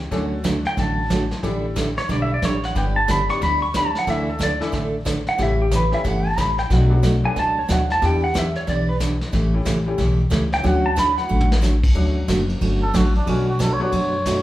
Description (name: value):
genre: country, western swing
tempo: 182 BPM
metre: 4/4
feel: swing 64% on 8ths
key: D major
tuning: A4 = 443 Hz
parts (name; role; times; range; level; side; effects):
- upright bass; bass; 0.0-14.4 s; F#1 to F#2; -22 LUFS; equal; none
- vintage brush drum kit; drums; 0.0-14.4 s; brushed snare drum, crash cymbal, hi-hat, kick drum, ride cymbal, snare drum, toms; -26 LUFS; equal; none
- bright upright piano; accompaniment; 0.1-13.9 s; E3 to D5; -28 LUFS; left 3 dB; none
- picked steel-string acoustic guitar; accompaniment; 0.1-14.4 s; B2 to A4; -23 LUFS; right 2 dB; none
- pedal steel guitar; melody; 0.7-11.5 s; G4 to C#6; -22 LUFS; right 1 dB; none
- trumpet with cup mute; second line; 12.8-14.4 s; C#4 to C#5; -24 LUFS; equal; none
room: wet large studio reverb, RT60 0.9 s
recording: band playing live in one room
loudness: -18 LUFS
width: side -15 dB against mid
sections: 0.0-12.0 A section; 12.0-14.4 A section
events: pedal steel guitar solo 0.0-12.0; drum fill 11.3-11.6; muted trumpet solo 12.0-14.4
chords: 0.1 Dmaj7; 1.4 A7sus4; 2.8 G; 4.1 Dsus2; 5.4 A7; 6.7 Bm7; 8.0 Em7; 9.3 A7; 10.6 Dmaj7; 13.3 Bm7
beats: | 0.12 0.45 0.78 1.10 | 1.44 1.76 2.09 2.42 | 2.75 3.08 3.41 3.74 | 4.07 4.40 4.73 5.06 | 5.39 5.72 6.05 6.38 | 6.70 7.03 7.36 7.69 | 8.02 8.35 8.67 9.00 | 9.33 9.66 9.99 10.31 | 10.64 10.97 11.30 11.63 | 11.96 12.28 12.61 12.94 | 13.27 13.60 13.93 14.26